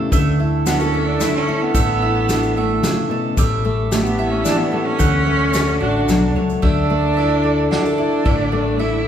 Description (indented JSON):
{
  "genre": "acoustic folk duo or small band",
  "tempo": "111 BPM",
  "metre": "3/4",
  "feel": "straight",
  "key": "D major",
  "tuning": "A4 = 440 Hz",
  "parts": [
    { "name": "fingerpicked steel-string acoustic guitar", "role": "accompaniment", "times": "0.0-9.1 s", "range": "A2 to A4", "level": "-21 LUFS", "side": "left 4 dB", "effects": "none" },
    { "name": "bowl-back mandolin", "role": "arpeggios", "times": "0.0-9.1 s", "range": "G3 to F#5", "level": "-25 LUFS", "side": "right 6 dB", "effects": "none" },
    { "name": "fingered electric bass", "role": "bass", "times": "0.1-9.1 s", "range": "A1 to D2", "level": "-22 LUFS", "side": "equal", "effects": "none" },
    { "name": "vintage brush drum kit", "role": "drums", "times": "0.1-8.9 s", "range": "hi-hat, kick drum, ride cymbal, snare drum", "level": "-22 LUFS", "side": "equal", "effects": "none" },
    { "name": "egg shaker", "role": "percussion", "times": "0.1-6.6 s", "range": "none", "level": "-32 LUFS", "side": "left 6 dB", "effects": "none" },
    { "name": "clear cello", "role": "second line", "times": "0.7-9.1 s", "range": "A3 to E4", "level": "-21 LUFS", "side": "right 3 dB", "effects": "none" }
  ],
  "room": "wet recital hall reverb, RT60 1.5 s",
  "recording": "heard from further back in the room",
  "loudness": "-15 LUFS",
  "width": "side -9 dB against mid",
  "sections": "0.0-6.6 A section; 6.6-9.1 B section",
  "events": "cello solo 0.0-6.6, 6.6-9.1",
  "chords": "0.1 Dsus2; 3.4 A7sus4; 5.0 Dmaj7; 6.6 Dsus2",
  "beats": "| 0.12 0.66 1.20 | 1.75 2.29 2.83 | 3.37 3.92 4.46 | 5.00 5.54 6.09 | 6.63 7.17 7.71 | 8.26 8.80"
}